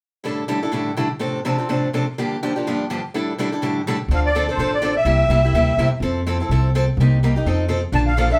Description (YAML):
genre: acoustic string swing (jazz manouche)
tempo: 250 BPM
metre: 4/4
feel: swing 56% on 8ths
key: D minor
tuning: A4 = 440 Hz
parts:
  - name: picked acoustic archtop guitar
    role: accompaniment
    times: 0.2-8.4 s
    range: G2 to A4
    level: -24 LUFS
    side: equal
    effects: none
  - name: upright bass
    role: bass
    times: 4.1-8.3 s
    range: A1 to F2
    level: -21 LUFS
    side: equal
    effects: none
  - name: musette accordion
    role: melody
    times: 4.2-5.9, 7.9-8.4 s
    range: C5 to A5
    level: -22 LUFS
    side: equal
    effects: slapback echo
room: wet studio ambience, RT60 0.5 s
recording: heard from further back in the room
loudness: -20 LUFS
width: mono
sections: 0.3-4.1 A section; 4.1-8.4 B section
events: none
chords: 0.3 A7sus4; 1.2 Dm7/A; 2.2 Gm7; 3.1 A7sus4; 4.1 Dm7; 5.1 C7; 6.0 Fmaj7; 7.0 Cm7; 7.5 F7